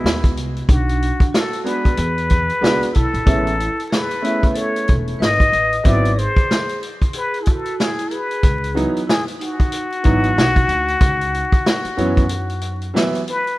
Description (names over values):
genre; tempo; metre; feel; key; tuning
hip hop, jazz-hop; 93 BPM; 4/4; swing 60% on 16ths; C# minor; A4 = 440 Hz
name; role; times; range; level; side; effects
trumpet with plunger mute; melody; 0.0-13.6 s; E4 to D#5; -21 LUFS; left 2 dB; tape echo
vibraphone with medium hard mallets; second line; 0.0-12.9 s; B3 to B4; -29 LUFS; right 1 dB; tape echo
clear concert grand piano; accompaniment; 0.0-13.2 s; E3 to D#5; -22 LUFS; right 1 dB; none
upright bass; bass; 0.0-12.9 s; E1 to F#2; -22 LUFS; equal; none
vintage drum kit; drums; 0.1-13.6 s; hi-hat, kick drum, snare drum; -17 LUFS; equal; none
room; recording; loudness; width
little or no reverb; rough home demo mix, vinyl crackle; -15 LUFS; side -18 dB against mid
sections
0.0-13.6 A section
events
break 12.3-13.6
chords
0.0 Emaj9; 0.7 Bm; 2.0 E9; 3.3 Amaj9; 5.8 G#7alt; 8.4 C#m11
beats
0.04 | 0.69 1.33 1.98 2.62 | 3.27 3.91 4.56 5.20 | 5.85 6.49 7.14 7.78 | 8.43 9.07 9.72 10.36 | 11.01 11.65 12.30 12.94